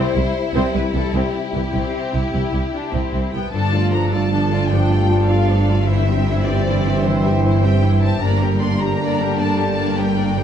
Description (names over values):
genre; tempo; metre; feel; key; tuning
cinematic, heroic adventure film score; 102 BPM (dotted quarters); 12/8; straight; unclear; A4 = 440 Hz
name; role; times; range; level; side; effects
rich symphonic violin section; melody; 0.0-10.4 s; G4 to C6; -27 LUFS; left 4 dB; none
clear symphonic violin section; second line; 0.0-10.4 s; D4 to E5; -28 LUFS; left 4 dB; none
warm symphonic viola section; accompaniment; 0.0-10.4 s; E3 to F4; -25 LUFS; equal; none
mellow French horn section; sustained chords; 0.0-3.3 s; G3 to E4; -27 LUFS; left 7 dB; none
concert harp; arpeggios; 0.0-10.4 s; G2 to D5; -24 LUFS; left 8 dB; none
rich symphonic cello section; bass; 0.0-10.4 s; C2 to G2; -22 LUFS; right 2 dB; none
rich symphonic double bass section; bass; 0.0-10.4 s; G1 to C2; -22 LUFS; right 3 dB; none
warm trombone section; sustained chords; 3.5-10.4 s; D3 to D4; -25 LUFS; right 3 dB; none
room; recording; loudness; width
wet recital hall reverb, RT60 1.4 s; dark, warm production; -16 LUFS; side -9 dB against mid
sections
0.0-3.5 A section; 3.5-10.4 B section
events
none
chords
0.0 C; 3.5 Dm/G; 5.9 C/G; 8.2 Gm